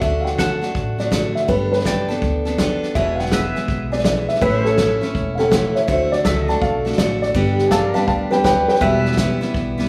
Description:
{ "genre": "honky-tonk and classic country", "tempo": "164 BPM", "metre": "4/4", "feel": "swing 65% on 8ths", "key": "D major", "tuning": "A4 = 440 Hz", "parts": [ { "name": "dark upright piano", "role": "second line", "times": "0.0-9.5 s", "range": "A4 to A5", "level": "-23 LUFS", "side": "equal", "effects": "none" }, { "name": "picked steel-string acoustic guitar", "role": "accompaniment", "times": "0.0-9.9 s", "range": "E2 to A4", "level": "-24 LUFS", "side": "equal", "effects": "none" }, { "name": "upright bass", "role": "bass", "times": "0.0-9.9 s", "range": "E1 to D2", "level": "-28 LUFS", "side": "equal", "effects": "none" }, { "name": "natural country drum kit", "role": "drums", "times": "0.0-9.9 s", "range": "hi-hat, kick drum, snare drum", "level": "-26 LUFS", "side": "equal", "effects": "none" }, { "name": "pedal steel guitar", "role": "sustained chords", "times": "0.4-9.9 s", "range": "A4 to A5", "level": "-30 LUFS", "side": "equal", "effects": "none" } ], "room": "moderate plate reverb, RT60 1.6 s", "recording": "small room ambience", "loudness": "-18 LUFS", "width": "mono", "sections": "0.0-9.9 A section", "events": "upright piano solo 0.0-9.9", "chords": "0.0 D; 1.5 Gadd9; 3.0 E; 4.4 A; 5.9 D; 7.3 G; 8.8 Em", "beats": "| 0.02 0.39 0.75 1.12 | 1.49 1.85 2.22 2.59 | 2.95 3.32 3.69 4.05 | 4.42 4.79 5.15 5.52 | 5.88 6.25 6.62 6.98 | 7.35 7.71 8.08 8.45 | 8.81 9.18 9.55" }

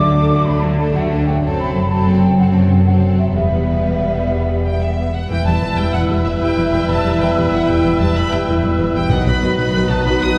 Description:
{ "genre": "cinematic", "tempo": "126 BPM (dotted quarters)", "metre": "12/8", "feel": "straight", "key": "E minor", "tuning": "A4 = 444 Hz", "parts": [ { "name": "rich symphonic violin section", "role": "melody", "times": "0.0-10.4 s", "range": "F#4 to D#6", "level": "-29 LUFS", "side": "equal", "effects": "none" }, { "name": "flute section", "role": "second line", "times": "0.0-10.4 s", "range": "E5 to F#6", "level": "-27 LUFS", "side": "equal", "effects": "none" }, { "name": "rich symphonic violin section", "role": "second line", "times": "0.0-10.4 s", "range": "A3 to E5", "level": "-29 LUFS", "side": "equal", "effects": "none" }, { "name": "warm symphonic viola section", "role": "accompaniment", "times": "0.0-10.4 s", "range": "D#3 to F#4", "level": "-27 LUFS", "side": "equal", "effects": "none" }, { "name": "mellow French horn section", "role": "sustained chords", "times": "0.0-10.4 s", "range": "F#3 to F#4", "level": "-26 LUFS", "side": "equal", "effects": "none" }, { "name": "concert harp", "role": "arpeggios", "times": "0.0-10.4 s", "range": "E2 to B4", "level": "-26 LUFS", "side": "equal", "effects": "none" }, { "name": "rich symphonic cello section", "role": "bass", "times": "0.0-10.3 s", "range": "E2 to D3", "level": "-22 LUFS", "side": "equal", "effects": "none" }, { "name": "rich symphonic double bass section", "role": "bass", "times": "0.0-10.3 s", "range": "E1 to D2", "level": "-23 LUFS", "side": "equal", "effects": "none" }, { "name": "mellow clarinet", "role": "second line", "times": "5.3-10.4 s", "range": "D#4 to E4", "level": "-29 LUFS", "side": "equal", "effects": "none" }, { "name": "warm oboe", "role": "second line", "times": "5.3-10.4 s", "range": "B4", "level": "-28 LUFS", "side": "equal", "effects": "none" }, { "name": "dark trombone section", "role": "sustained chords", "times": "5.3-10.4 s", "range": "D#3 to G3", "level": "-28 LUFS", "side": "equal", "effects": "none" }, { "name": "timpani", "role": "percussion", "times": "9.1-9.5 s", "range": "B2", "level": "-25 LUFS", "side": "equal", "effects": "none" } ], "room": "wet scoring stage reverb, RT60 1.9 s", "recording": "heard from further back in the room", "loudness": "-16 LUFS", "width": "mono", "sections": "0.0-5.3 A section; 5.3-10.4 A section", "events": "none", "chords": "0.0 D; 1.4 F#dim; 3.4 Em; 9.1 B", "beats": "0.01 0.48 0.95 | 1.43 1.91 2.38 2.87 | 3.35 3.84 4.33 4.82 | 5.30 5.78 6.26 6.73 | 7.21 7.68 8.16 8.63 | 9.11 9.58 10.05" }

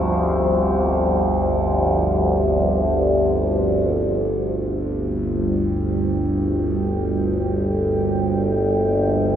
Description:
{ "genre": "dark ambient drone", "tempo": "free time", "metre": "none", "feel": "none", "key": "G minor", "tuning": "A4 = 440 Hz", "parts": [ { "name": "deep dark ambient pad", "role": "sustained chords", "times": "0.0-9.4 s", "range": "F3 to G5", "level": "-22 LUFS", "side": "equal", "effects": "chorus, built-in reverb" }, { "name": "overtone-sweeping drone", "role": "drone", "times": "0.0-9.4 s", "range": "G1 to D2", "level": "-20 LUFS", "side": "equal", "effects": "chorus, built-in reverb" }, { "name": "metallic inharmonic drone", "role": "texture", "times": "0.0-4.0 s", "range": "G3 to G4", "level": "-44 LUFS", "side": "right 2 dB", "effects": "none" } ], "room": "wet cathedral reverb, RT60 5.1 s", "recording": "none", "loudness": "-18 LUFS", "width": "side -9 dB against mid", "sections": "0.0-4.0 A section; 4.0-9.4 A section", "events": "none", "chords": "0.0 Gm", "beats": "free time" }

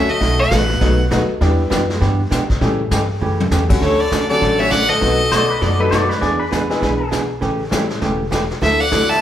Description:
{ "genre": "country, western swing", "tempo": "200 BPM", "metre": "4/4", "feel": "swing 62% on 8ths", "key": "D major", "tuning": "A4 = 440 Hz", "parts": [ { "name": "clear fiddle", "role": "melody", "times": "0.0-1.0, 3.8-5.8, 8.6-9.2 s", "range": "C#5 to A5", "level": "-18 LUFS", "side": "equal", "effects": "none" }, { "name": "clear fiddle", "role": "second line", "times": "0.0-1.0, 3.8-5.8, 8.6-9.2 s", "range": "A3 to E5", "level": "-22 LUFS", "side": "right 1 dB", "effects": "none" }, { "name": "tack piano", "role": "accompaniment", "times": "0.0-9.2 s", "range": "F#3 to A4", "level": "-23 LUFS", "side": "left 3 dB", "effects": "none" }, { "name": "vintage hollow-body jazz guitar", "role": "accompaniment", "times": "0.0-9.0 s", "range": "B2 to G#4", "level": "-21 LUFS", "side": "right 2 dB", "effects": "none" }, { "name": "upright bass", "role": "bass", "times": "0.0-9.1 s", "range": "E1 to B2", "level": "-21 LUFS", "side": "equal", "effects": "none" }, { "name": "vintage brush drum kit", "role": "drums", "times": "0.2-9.2 s", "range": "brushed snare drum, crash cymbal, hi-hat, kick drum, snare drum, toms", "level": "-22 LUFS", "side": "equal", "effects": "none" }, { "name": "pedal steel guitar", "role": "second line", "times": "5.3-7.1 s", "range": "B4 to D5", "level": "-21 LUFS", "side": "left 2 dB", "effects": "none" } ], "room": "moderate large studio reverb, RT60 1.1 s", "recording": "band playing live in one room", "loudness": "-14 LUFS", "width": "side -11 dB against mid", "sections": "0.0-3.8 A section; 3.8-9.2 B section", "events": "drum fill 3.2", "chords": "0.2 B7; 1.4 Em7; 2.6 A7; 3.8 Dmaj7; 5.0 B7; 6.2 E7; 7.4 A7; 8.6 Dadd9", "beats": "| 0.21 0.51 0.81 1.11 | 1.41 1.72 2.02 2.31 | 2.62 2.92 3.22 3.52 | 3.82 4.12 4.42 4.72 | 5.02 5.32 5.62 5.92 | 6.22 6.52 6.82 7.12 | 7.42 7.72 8.02 8.32 | 8.62 8.92" }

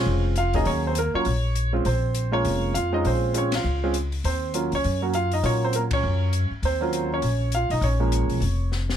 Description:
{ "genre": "jazz piano trio", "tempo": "201 BPM", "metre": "4/4", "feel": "swing 60% on 8ths", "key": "Bb minor", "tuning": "A4 = 440 Hz", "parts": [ { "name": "warm concert grand piano", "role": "melody", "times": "0.0-8.7 s", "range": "F3 to F5", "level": "-24 LUFS", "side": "right 2 dB", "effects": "none" }, { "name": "upright bass", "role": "bass", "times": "0.0-9.0 s", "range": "F1 to Bb2", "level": "-24 LUFS", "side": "left 1 dB", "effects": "none" }, { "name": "open jazz drum kit", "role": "drums", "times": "0.4-9.0 s", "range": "hi-hat, kick drum, ride cymbal, snare drum", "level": "-33 LUFS", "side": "left 4 dB", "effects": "none" } ], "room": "little or no reverb", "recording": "close, detailed microphones", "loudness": "-21 LUFS", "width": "side -9 dB against mid", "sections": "0.0-9.0 A section", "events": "band accent 3.5, 5.9; drum fill 8.7", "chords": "0.0 Bbm7 (rootless); 0.7 Ebm7; 1.9 Bbm7; 4.2 Ebm7; 7.8 Bbm7", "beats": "0.07 0.37 | 0.66 0.96 1.26 1.56 | 1.86 2.16 2.46 2.75 | 3.05 3.35 3.65 3.95 | 4.24 4.54 4.84 5.14 | 5.44 5.74 6.03 6.33 | 6.63 6.93 7.23 7.52 | 7.82 8.12 8.42 8.72" }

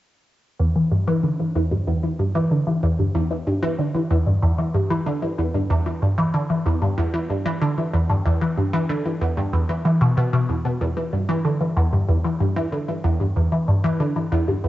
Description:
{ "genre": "ambient", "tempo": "94 BPM", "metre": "4/4", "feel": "straight", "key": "E minor", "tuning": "A4 = 441 Hz", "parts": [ { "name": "resonant blip pluck", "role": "solo", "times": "0.6-14.7 s", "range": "E2 to E3", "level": "-19 LUFS", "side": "equal", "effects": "phaser, lush chorus, tape echo" } ], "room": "wet spring reverb, RT60 1.6 s", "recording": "home recording on cassette, nothing above 7.8 kHz", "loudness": "-19 LUFS", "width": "side -15 dB against mid", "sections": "0.6-10.8 A section; 10.8-14.7 B section", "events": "none", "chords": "none", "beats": "| 0.59 1.23 1.87 2.51 | 3.15 3.79 4.42 5.06 | 5.70 6.34 6.98 7.62 | 8.26 8.89 9.53 10.17 | 10.81 11.45 12.09 12.72 | 13.36 14.00 14.64" }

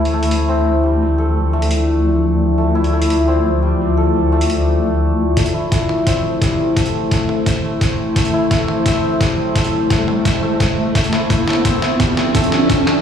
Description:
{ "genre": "half-time drum and bass", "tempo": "172 BPM", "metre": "4/4", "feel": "half-time", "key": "A minor", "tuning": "A4 = 440 Hz", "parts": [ { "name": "deep dark ambient pad", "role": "sustained chords", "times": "0.0-13.0 s", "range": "F3 to E5", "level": "-19 LUFS", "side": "left 2 dB", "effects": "chorus, built-in reverb, sidechain pumping" }, { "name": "santur", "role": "arpeggios", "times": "0.0-13.0 s", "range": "G3 to A4", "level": "-21 LUFS", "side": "equal", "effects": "low-pass filter, dub echo" }, { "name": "deep soft wobble bass", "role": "bass", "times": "0.0-5.4 s", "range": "D2", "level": "-16 LUFS", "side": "left 1 dB", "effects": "chorus" }, { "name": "boom bap sampler-style drum kit", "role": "drums", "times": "0.1-12.9 s", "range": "hi-hat, snare drum, toms", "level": "-23 LUFS", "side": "equal", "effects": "overdrive, high-pass filter on snare, high-pass filter on hats, high-pass filter on toms" }, { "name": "electronic kick drum", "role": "drums", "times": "5.4-12.8 s", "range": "none", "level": "-18 LUFS", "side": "equal", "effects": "overdrive" }, { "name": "riser", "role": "sound effects", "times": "7.0-13.0 s", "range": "none", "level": "-22 LUFS", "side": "right 1 dB", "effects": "none" } ], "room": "moderate echo chamber reverb, RT60 1.5 s, digital ambience", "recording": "played on a big sound system in a bare room, stone room reverb, studio reverb", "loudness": "-14 LUFS", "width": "side -8 dB against mid", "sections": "0.0-5.4 A section; 5.4-13.0 B section", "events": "filter sweep on ambient pad 0.0-5.4; build-up 5.4-13.0; drum fill 5.4-13.0; filter sweep on santur 5.4-13.0; riser 7.0-13.0", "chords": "0.0 Dmadd9; 5.4 Am; 11.0 Dmadd9", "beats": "0.14 0.49 0.84 | 1.19 1.53 1.88 2.23 | 2.58 2.93 3.28 3.63 | 3.98 4.32 4.67 5.02 | 5.37 5.72 6.07 6.42 | 6.77 7.12 7.46 7.81 | 8.16 8.51 8.86 9.21 | 9.56 9.91 10.25 10.60 | 10.95 11.30 11.65 12.00 | 12.35 12.70" }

